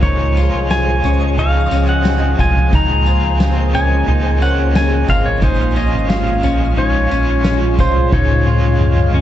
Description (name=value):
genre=dream pop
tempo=89 BPM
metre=4/4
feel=straight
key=unclear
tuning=A4 = 441 Hz
part: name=pedal steel guitar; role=melody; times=0.0-9.2 s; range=C5 to Bb5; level=-20 LUFS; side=right 1 dB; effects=dub echo
part: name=overdriven electric guitar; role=accompaniment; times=0.0-9.2 s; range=Bb2 to F4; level=-26 LUFS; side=right 3 dB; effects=tremolo, lush chorus, dub echo
part: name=phased analog pad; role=sustained chords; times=0.0-9.2 s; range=F3 to Ab4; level=-22 LUFS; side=equal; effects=phaser, chorus
part: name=clean electric guitar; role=arpeggios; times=0.0-9.2 s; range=Db4 to F4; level=-23 LUFS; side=left 6 dB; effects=lush chorus, dub echo
part: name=sub bass with octave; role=bass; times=0.0-9.2 s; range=Ab1 to Db2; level=-16 LUFS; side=equal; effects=none
part: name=soft-mallet drum kit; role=drums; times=0.0-9.2 s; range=kick drum, snare drum, tambourine, toms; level=-19 LUFS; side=equal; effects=none
part: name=twinkling granular texture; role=texture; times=0.0-9.2 s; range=Ab4 to C6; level=-30 LUFS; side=equal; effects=built-in reverb, dub echo
room=light reverb, small room reverb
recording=echo-heavy mix, nothing above 8.0 kHz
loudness=-12 LUFS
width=side -12 dB against mid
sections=0.0-9.2 A section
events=drum fill 8.1-9.2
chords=0.0 Bbm7; 8.1 Db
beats=| 0.03 0.71 1.38 2.06 | 2.73 3.40 4.08 4.75 | 5.43 6.10 6.78 7.45 | 8.12 8.80